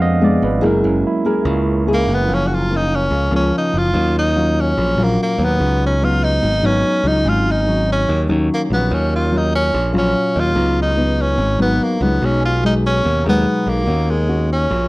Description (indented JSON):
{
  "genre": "bossa nova",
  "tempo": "145 BPM",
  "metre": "4/4",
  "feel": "straight",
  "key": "Eb minor",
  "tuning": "A4 = 441 Hz",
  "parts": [
    { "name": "barky tine electric piano", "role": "accompaniment", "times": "0.0-14.0 s", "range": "G#3 to Bb5", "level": "-25 LUFS", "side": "right 4 dB", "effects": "none" },
    { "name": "nylon-string guitar", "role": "accompaniment", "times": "0.0-14.9 s", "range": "Gb2 to G#4", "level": "-19 LUFS", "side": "left 2 dB", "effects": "none" },
    { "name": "modern bright picked electric bass", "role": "bass", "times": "0.0-14.9 s", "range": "F#1 to E#2", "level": "-18 LUFS", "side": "equal", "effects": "none" },
    { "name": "bright tenor saxophone", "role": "melody", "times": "1.9-14.9 s", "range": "Ab3 to Gb4", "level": "-19 LUFS", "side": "equal", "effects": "slapback echo" }
  ],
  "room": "light reverb",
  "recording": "dry, close 1970s-style studio recording",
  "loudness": "-14 LUFS",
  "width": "side -20 dB against mid",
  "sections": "0.0-2.3 A section; 2.3-14.9 B section",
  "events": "tine electric piano solo 0.0-2.3",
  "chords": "0.0 A#7b9 (rootless); 0.6 F#9; 2.3 Gbmaj7; 3.9 Ebm9; 5.6 Db9sus4; 7.3 Ab7sus4; 8.9 Ebm9; 10.6 Db9sus4; 12.2 Abm7/Cb; 13.9 Ebm7",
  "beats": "0.22 | 0.63 1.05 1.46 1.87 | 2.29 2.70 3.12 3.53 | 3.94 4.36 4.77 5.19 | 5.60 6.01 6.43 6.84 | 7.25 7.67 8.08 8.50 | 8.91 9.32 9.74 10.15 | 10.56 10.98 11.39 11.80 | 12.22 12.63 13.04 13.46 | 13.87 14.29 14.70"
}